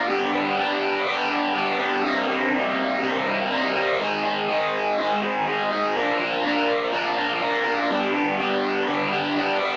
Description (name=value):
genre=rock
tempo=123 BPM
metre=4/4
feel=straight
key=unclear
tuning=A4 = 439 Hz
part: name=crunchy overdriven guitar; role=solo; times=0.0-9.8 s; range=C2 to Bb4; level=-20 LUFS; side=equal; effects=phaser
room=moderate studio reverb, RT60 0.7 s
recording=rough rehearsal-room recording, tube saturation, small speaker sound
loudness=-20 LUFS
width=side -32 dB against mid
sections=0.0-9.8 A section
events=none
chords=0.1 G; 2.1 Cm7; 4.0 Ab5; 6.0 Bb; 7.9 G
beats=| 0.10 0.58 1.07 1.56 | 2.05 2.54 3.03 3.52 | 4.01 4.50 4.98 5.47 | 5.96 6.45 6.93 7.42 | 7.91 8.40 8.88 9.37